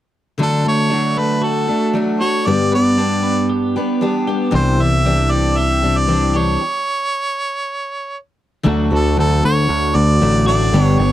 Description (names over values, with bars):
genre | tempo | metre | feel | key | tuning
rock | 116 BPM | 4/4 | straight | D major | A4 = 442 Hz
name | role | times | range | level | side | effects
bright harmonica | melody | 0.4-11.1 s | A4 to E5 | -19 LUFS | right 2 dB | none
picked steel-string acoustic guitar | accompaniment | 0.4-11.1 s | G2 to G4 | -19 LUFS | left 4 dB | none
twelve-string electric guitar | riff | 0.4-11.1 s | G2 to G4 | -19 LUFS | right 1 dB | spring reverb
picked electric bass | bass | 4.5-11.1 s | G1 to D2 | -17 LUFS | equal | none
room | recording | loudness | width
light reverb | dry, close 1970s-style studio recording | -14 LUFS | side -13 dB against mid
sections
0.4-8.7 A section; 8.7-11.1 B section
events
stop 6.6-8.7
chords
0.4 D; 2.5 G; 4.5 Cadd9; 6.6 N.C.; 8.7 D